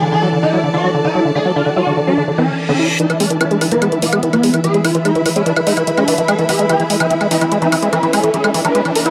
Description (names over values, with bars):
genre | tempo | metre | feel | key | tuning
psychedelic trance | 146 BPM | 4/4 | straight | unclear | A4 = 439 Hz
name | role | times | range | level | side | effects
evolving wavetable pad | sustained chords | 0.0-9.1 s | E3 | -25 LUFS | equal | chorus, built-in reverb
overdriven acid bass | riff | 0.0-9.1 s | D3 to E4 | -19 LUFS | equal | dub echo
warm symphonic string section | texture | 0.0-9.1 s | D4 to B5 | -24 LUFS | equal | none
swarming rave lead | melody | 0.1-9.1 s | B3 to B4 | -21 LUFS | equal | chorus, phaser, tape echo
reverse cymbal and riser | sound effects | 2.4-9.1 s | none | -28 LUFS | equal | none
electronic hi-hat and woodblock | drums | 3.0-9.1 s | none | -23 LUFS | equal | none
room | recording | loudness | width
moderate plate reverb, RT60 2.0 s | none | -15 LUFS | mono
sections
0.0-3.0 A section; 3.0-9.1 B section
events
reverse cymbal 2.4-3.0; build-up 3.0-9.1; filter sweep on acid bass 3.0-9.1; filter sweep on digital synth lead 3.0-9.1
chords
0.0 D5; 3.0 E5